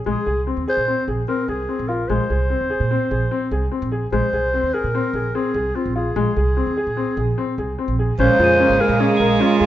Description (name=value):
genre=contemporary instrumental, chamber music in an uneven meter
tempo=148 BPM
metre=5/4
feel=straight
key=unclear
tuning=A4 = 439 Hz
part: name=growling clarinet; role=melody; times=0.1-9.7 s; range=F4 to C5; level=-21 LUFS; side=equal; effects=none
part: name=clear concert grand piano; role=arpeggios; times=0.1-9.7 s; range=Ab3 to Bb4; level=-23 LUFS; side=left 4 dB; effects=none
part: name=upright bass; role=bass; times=0.1-9.7 s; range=Ab1 to Bb2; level=-23 LUFS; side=right 2 dB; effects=none
part: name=clear cello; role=second line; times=8.2-9.7 s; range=Ab3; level=-20 LUFS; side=right 5 dB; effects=none
part: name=pedal harmonium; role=sustained chords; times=8.2-9.7 s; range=Db3 to Ab4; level=-23 LUFS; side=right 2 dB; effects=none
part: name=crotales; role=texture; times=8.4-9.7 s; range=Eb7 to Ab7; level=-26 LUFS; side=left 2 dB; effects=none
room=moderate recital hall reverb, RT60 1.5 s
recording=nothing above 7.9 kHz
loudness=-17 LUFS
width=side -13 dB against mid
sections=0.0-8.2 A section; 8.2-9.7 A section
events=none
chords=0.1 Fm/Bb (rootless); 8.2 Bbm7